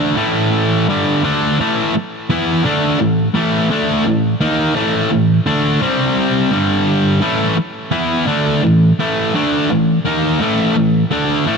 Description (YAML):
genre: rock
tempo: 85 BPM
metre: 4/4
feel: straight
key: unclear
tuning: A4 = 440 Hz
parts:
  - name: sludgy distorted guitar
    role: solo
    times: 0.0-11.6 s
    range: G2 to E4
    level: -13 LUFS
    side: equal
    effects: overdrive, digital delay
room: light reverb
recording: none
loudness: -13 LUFS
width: side -5 dB against mid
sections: 0.0-11.6 A section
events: none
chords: 0.0 A5; 5.8 C5; 6.5 G5; 7.2 A5